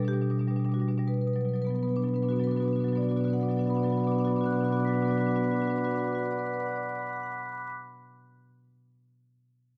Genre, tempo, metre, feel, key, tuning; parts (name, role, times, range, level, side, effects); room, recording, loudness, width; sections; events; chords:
classical, contemporary piece for solo marimba; 92 BPM; 4/4; rubato; B minor; A4 = 440 Hz
marimba with medium hard mallets; solo; 0.0-7.7 s; B2 to B6; -29 LUFS; equal
wet large studio reverb, RT60 1.5 s; -28 LUFS; mono
0.0-1.1 A section; 1.1-6.3 B section
slowing down 0.0-1.1
0.0 Gmaj7/B; 1.1 Bm